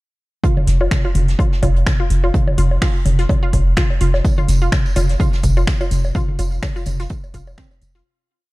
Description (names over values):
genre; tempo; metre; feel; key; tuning
minimal techno; 126 BPM; 4/4; swing 56% on 16ths; unclear; A4 = 441 Hz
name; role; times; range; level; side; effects
resonant blip pluck; riff; 0.4-8.0 s; C4 to F4; -27 LUFS; equal; chorus, sidechain pumping, tape echo
electronic kick drum; drums; 0.4-7.7 s; none; -18 LUFS; equal; overdrive
soft brush drum kit; drums; 0.4-8.1 s; hi-hat, snare drum; -36 LUFS; right 2 dB; sidechain pumping on hats, high-pass filter on hats, high-pass filter on snare, high-pass filter on room
electronic toms and bongos; percussion; 0.4-7.9 s; none; -23 LUFS; left 2 dB; none
punchy sub bass; bass; 0.7-8.0 s; F1; -17 LUFS; equal; sidechain pumping
house drum kit; drums; 0.7-7.9 s; finger snaps, hi-hat; -28 LUFS; equal; overdrive
tambourine; percussion; 4.2-8.0 s; none; -36 LUFS; right 4 dB; none
room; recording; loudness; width
digital ambience; dark, warm production; -14 LUFS; side -20 dB against mid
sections
0.4-8.1 drop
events
drop 0.4-8.1; fade-out 5.5-8.1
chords
0.4 F5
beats
| 0.44 0.91 1.39 1.86 | 2.34 2.82 3.29 3.77 | 4.25 4.72 5.20 5.67 | 6.15 6.63 7.10 7.58